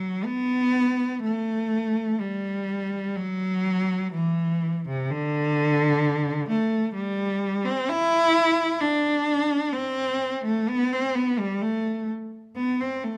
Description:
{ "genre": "classical, free, expressive piece for unaccompanied cello", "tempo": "63 BPM", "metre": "3/4", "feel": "uneven beats, rubato", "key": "E minor", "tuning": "A4 = 444 Hz", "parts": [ { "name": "rich cello", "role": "solo", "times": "0.0-13.2 s", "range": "C3 to E4", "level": "-25 LUFS", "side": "equal", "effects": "none" } ], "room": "moderate large studio reverb, RT60 1.4 s", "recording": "close, detailed microphones", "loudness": "-25 LUFS", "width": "mono", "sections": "0.0-13.2 A section", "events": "none", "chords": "none", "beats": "0.24 | 1.21 2.19 3.15 | 4.14 5.09 6.01 | 6.95 7.88 8.80 | 9.71 10.66 11.60 | 12.55" }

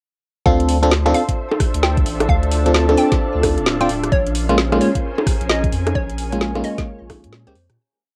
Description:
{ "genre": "UK garage, two-step garage", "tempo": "131 BPM", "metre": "4/4", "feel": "swing 62% on 16ths", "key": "unclear", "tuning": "A4 = 438 Hz", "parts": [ { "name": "hollow square pluck", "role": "melody", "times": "0.5-7.7 s", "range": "C5 to G5", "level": "-27 LUFS", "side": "equal", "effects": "chorus, cassette tape, tape echo" }, { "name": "soft string machine", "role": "sustained chords", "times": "1.0-7.8 s", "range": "Db4 to E5", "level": "-33 LUFS", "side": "equal", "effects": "ensemble chorus, vintage 12-bit sampler grit, sidechain pumping, cassette tape" }, { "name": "FM electric piano", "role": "stabs", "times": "0.5-7.6 s", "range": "Ab3 to C5", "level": "-21 LUFS", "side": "equal", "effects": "chorus, phaser, cassette tape, analog delay" }, { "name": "saturated sub bass", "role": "bass", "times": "0.5-7.8 s", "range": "D1 to Bb2", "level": "-23 LUFS", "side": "equal", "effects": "none" }, { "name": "electronic kick drum", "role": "drums", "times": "0.5-7.2 s", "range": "none", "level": "-22 LUFS", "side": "equal", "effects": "none" }, { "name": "warbly tape-like pad", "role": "texture", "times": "1.3-7.8 s", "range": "Db4 to A5", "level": "-30 LUFS", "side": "equal", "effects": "chorus, built-in reverb, phaser, sidechain pumping, cassette tape" }, { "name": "garage drum kit", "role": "drums", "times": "0.6-7.8 s", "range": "bongos, hi-hat, rim click, snare drum", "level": "-24 LUFS", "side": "equal", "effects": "none" } ], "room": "light reverb", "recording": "home recording on cassette", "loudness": "-18 LUFS", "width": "mono", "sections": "0.5-7.8 drop", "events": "drop 0.5-7.8; fade-out 5.3-7.8", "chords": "0.5 Dm7; 4.1 Bbm7", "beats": "| 0.46 0.92 1.37 1.83 | 2.29 2.75 3.21 3.66 | 4.12 4.58 5.04 5.50 | 5.95 6.41 6.87 7.33" }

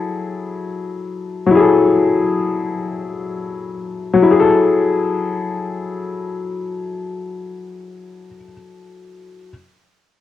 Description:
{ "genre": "hip hop", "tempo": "free time", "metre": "none", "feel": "none", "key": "F# minor", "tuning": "A4 = 437 Hz", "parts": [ { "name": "warm upright piano", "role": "solo", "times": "0.0-9.5 s", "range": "F#3 to A4", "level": "-16 LUFS", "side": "left 4 dB", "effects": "low-pass filter, cassette tape" } ], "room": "moderate small room reverb, RT60 0.5 s", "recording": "home recording on cassette", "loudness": "-15 LUFS", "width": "side -12 dB against mid", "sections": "0.0-4.3 A section; 4.3-7.0 B section", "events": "none", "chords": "0.0 F#m9", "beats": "free time" }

